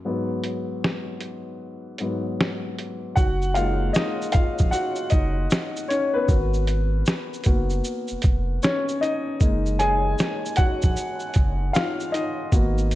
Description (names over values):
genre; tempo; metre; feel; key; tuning
lo-fi hip hop; 77 BPM; 4/4; swing 66% on 16ths; unclear; A4 = 440 Hz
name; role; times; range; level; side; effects
dark upright piano; accompaniment; 0.0-13.0 s; G#2 to G#5; -25 LUFS; left 2 dB; cassette tape, low-pass filter
lo-fi sampler-style drum kit; drums; 0.4-13.0 s; hi-hat, kick drum, shaker, snare drum; -22 LUFS; equal; vintage 12-bit sampler grit
saturated sub bass; bass; 3.2-13.0 s; E#1 to A#1; -24 LUFS; equal; none
room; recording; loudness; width
light reverb; none; -21 LUFS; side -15 dB against mid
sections
0.0-3.2 A section; 3.2-13.0 B section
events
upright piano solo 0.0-3.2, 3.2-13.0; filter sweep on upright piano 0.0-3.2; break 0.1-3.2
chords
0.1 G#m7; 3.2 F#69; 6.3 G#m7; 9.4 F#69